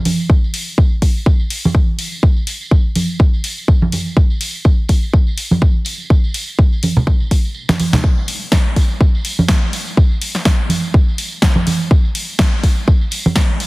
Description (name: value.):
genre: house.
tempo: 124 BPM.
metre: 4/4.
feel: swing 56% on 16ths.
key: none.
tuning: none.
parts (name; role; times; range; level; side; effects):
house drum kit; drums; 0.1-13.7 s; hi-hat, snare drum; -21 LUFS; left 1 dB; sidechain pumping on hats.
congas and tambourine; percussion; 0.1-13.7 s; none; -20 LUFS; right 2 dB; sidechain pumping on perc, low-pass filter on perc.
electronic kick drum; drums; 0.3-13.5 s; none; -12 LUFS; equal; none.
room: little or no reverb.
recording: heavily compressed radio sound, multiband compression.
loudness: -13 LUFS.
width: side -22 dB against mid.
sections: 0.0-13.7 A section.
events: kick drops out 7.6-8.0; drum fill 7.7-8.0.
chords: none.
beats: | 0.30 0.78 1.26 1.75 | 2.23 2.72 3.20 3.68 | 4.17 4.65 5.14 5.62 | 6.10 6.59 7.07 7.55 | 8.04 8.52 9.01 9.49 | 9.97 10.46 10.94 11.43 | 11.91 12.39 12.88 13.36.